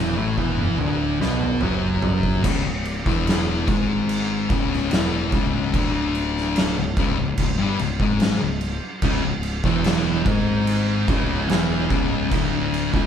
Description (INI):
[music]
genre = stoner and doom metal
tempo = 73 BPM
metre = 4/4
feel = straight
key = C# minor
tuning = A4 = 440 Hz
[part]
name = thick fuzz guitar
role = riff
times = 0.0-13.1 s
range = C#2 to B3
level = -23 LUFS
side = left 5 dB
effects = distortion
[part]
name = thick fuzz guitar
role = riff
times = 0.0-2.4, 9.0-13.1 s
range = C#2 to B3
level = -26 LUFS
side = right 10 dB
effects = distortion
[part]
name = picked electric bass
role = bass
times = 0.0-13.1 s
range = C#1 to B1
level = -28 LUFS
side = right 1 dB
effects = overdrive
[part]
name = oversized low-tuned drum kit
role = drums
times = 0.4-13.1 s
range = crash cymbal, kick drum, snare drum, toms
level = -23 LUFS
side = right 1 dB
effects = none
[sound]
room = light reverb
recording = band playing live in one room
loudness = -19 LUFS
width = side -8 dB against mid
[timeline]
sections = 0.0-2.4 A section; 2.4-13.1 B section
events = drum fill 0.0-2.4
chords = 0.0 N.C.; 2.4 C#m